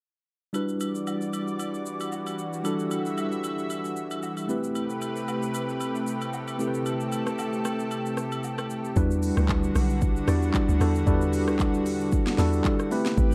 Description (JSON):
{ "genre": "amapiano", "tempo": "114 BPM", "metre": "4/4", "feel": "swing 55% on 16ths", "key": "E minor", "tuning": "A4 = 440 Hz", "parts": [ { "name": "tine electric piano", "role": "accompaniment", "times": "0.5-13.3 s", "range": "G3 to D5", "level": "-30 LUFS", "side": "equal", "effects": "medium tremolo" }, { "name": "lush unison pad", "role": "sustained chords", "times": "0.9-13.3 s", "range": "C3 to E5", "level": "-34 LUFS", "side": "equal", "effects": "chorus, sidechain pumping" }, { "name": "afro-pop drum kit", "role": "drums", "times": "0.5-13.3 s", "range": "handclaps, hi-hat, kick drum, rim click, shaker, snare drum", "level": "-32 LUFS", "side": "equal", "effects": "none" }, { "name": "agogo bells and woodblock", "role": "percussion", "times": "0.5-8.7 s", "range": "none", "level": "-42 LUFS", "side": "equal", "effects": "none" }, { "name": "hollow log drum bass", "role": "bass", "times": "9.0-13.3 s", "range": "A1 to E2", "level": "-28 LUFS", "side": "equal", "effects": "none" } ], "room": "digital ambience", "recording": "dark, warm production", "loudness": "-27 LUFS", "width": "mono", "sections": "0.5-9.0 A section; 9.0-13.3 B section", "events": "drop 9.0-13.3", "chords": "0.5 Em9; 4.5 Am9; 9.0 Em9", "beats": "| 0.54 1.07 1.60 2.12 | 2.65 3.17 3.70 4.23 | 4.75 5.28 5.81 6.33 | 6.86 7.38 7.91 8.44 | 8.96 9.49 10.02 10.54 | 11.07 11.60 12.12 12.65 | 13.18" }